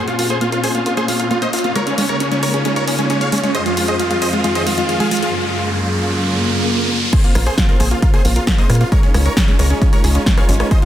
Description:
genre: uplifting trance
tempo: 134 BPM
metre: 4/4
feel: straight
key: Bb minor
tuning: A4 = 445 Hz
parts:
  - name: big supersaw lead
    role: melody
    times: 0.0-10.8 s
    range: Db4 to F5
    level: -20 LUFS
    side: equal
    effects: sidechain pumping, low-pass filter, digital delay
  - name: muted studio string section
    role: sustained chords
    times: 0.0-10.8 s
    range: F2 to F4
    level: -22 LUFS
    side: equal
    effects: sidechain pumping
  - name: riser and swell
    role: sound effects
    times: 0.1-7.1 s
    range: none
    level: -23 LUFS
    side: equal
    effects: none
  - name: wide unison pluck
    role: arpeggios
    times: 0.1-10.8 s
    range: Ab3 to Bb4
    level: -24 LUFS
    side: right 1 dB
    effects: sidechain pumping, digital delay
  - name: punchy analog drum machine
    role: drums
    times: 0.1-10.8 s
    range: crash cymbal, hi-hat, rim click, snare drum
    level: -23 LUFS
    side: equal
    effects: none
  - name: electronic kick drum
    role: drums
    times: 7.1-10.8 s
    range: none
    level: -15 LUFS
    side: equal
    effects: overdrive
  - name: tight sequencer bass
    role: bass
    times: 7.4-10.6 s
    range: Ab1 to Bb2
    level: -15 LUFS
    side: equal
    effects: sidechain pumping
room: moderate lush hall reverb, RT60 2.0 s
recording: dense, heavily limited modern master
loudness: -14 LUFS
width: side -12 dB against mid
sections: 0.0-7.1 A section; 7.1-10.8 B section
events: build-up 0.0-7.1; filter sweep on synth arpeggio sound 0.0-7.1; riser 0.1-7.1; swell 6.2-7.1; drop 7.1-10.8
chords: 0.0 Bbmadd9; 1.8 Db6; 3.5 Fm7; 5.3 Gbmaj7; 7.1 Bbmadd9; 8.9 Db6

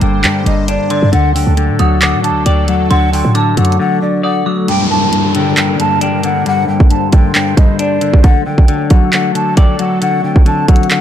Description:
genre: hip hop, trap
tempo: 135 BPM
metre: 4/4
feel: half-time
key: G harmonic minor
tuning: A4 = 440 Hz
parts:
  - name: breathy mellow jazz flute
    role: melody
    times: 0.0-11.0 s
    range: D5 to A5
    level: -18 LUFS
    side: right 1 dB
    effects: none
  - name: dark detuned synth bell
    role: second line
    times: 0.0-4.7 s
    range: C6 to Eb6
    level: -24 LUFS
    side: right 5 dB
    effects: chorus, phaser, tape echo
  - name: semi-hollow electric guitar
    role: accompaniment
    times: 0.0-11.0 s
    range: G2 to D5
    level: -15 LUFS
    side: left 5 dB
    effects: none
  - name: sweeping resonant pad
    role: sustained chords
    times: 0.0-11.0 s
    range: F#3 to C5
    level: -22 LUFS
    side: right 1 dB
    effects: chorus
  - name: short 808-style bass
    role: bass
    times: 0.0-3.8 s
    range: G1 to A2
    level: -13 LUFS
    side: right 1 dB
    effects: none
  - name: trap drum kit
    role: drums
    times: 0.0-11.0 s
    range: handclaps, hi-hat, kick drum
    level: -10 LUFS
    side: right 1 dB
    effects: none
  - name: downlifter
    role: sound effects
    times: 4.7-8.2 s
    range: none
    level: -21 LUFS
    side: equal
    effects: none
room: digital ambience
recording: dark, warm production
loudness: -10 LUFS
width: side -10 dB against mid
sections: 0.0-4.7 A section; 4.7-11.0 B section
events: break 3.8-4.7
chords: 0.0 Gm; 1.1 D; 4.7 Gm; 8.2 D

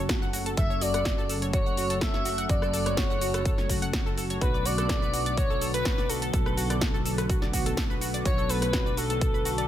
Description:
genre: progressive house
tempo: 125 BPM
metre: 4/4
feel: straight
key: unclear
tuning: A4 = 441 Hz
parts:
  - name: lush unison pad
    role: sustained chords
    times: 0.0-9.7 s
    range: C#3 to A4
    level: -34 LUFS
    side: equal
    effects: chorus, sidechain pumping
  - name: analog pluck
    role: arpeggios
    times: 0.0-9.6 s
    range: F#4 to F#6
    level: -35 LUFS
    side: right 1 dB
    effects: chorus, sidechain pumping, digital delay
  - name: tight sequencer bass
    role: bass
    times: 0.0-9.7 s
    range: F#1 to B1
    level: -32 LUFS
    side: equal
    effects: sidechain pumping
  - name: deep house drum kit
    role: drums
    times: 0.1-9.7 s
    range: hi-hat, rim click, shaker, snare drum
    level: -32 LUFS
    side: left 1 dB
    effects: overdrive
  - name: electronic kick drum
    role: drums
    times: 0.1-9.3 s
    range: none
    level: -28 LUFS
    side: equal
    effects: none
  - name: expressive synth lead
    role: melody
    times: 0.6-9.7 s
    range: A4 to E5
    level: -32 LUFS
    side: left 1 dB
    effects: chorus, cassette tape, sidechain pumping, digital delay
  - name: airy dreamy lead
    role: second line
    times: 0.6-9.7 s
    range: A4 to E5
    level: -36 LUFS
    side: left 1 dB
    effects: chorus, sidechain pumping, digital delay
room: digital ambience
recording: none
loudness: -24 LUFS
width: side -11 dB against mid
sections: 0.0-9.7 A section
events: none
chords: 0.0 F#m; 4.4 Bm7

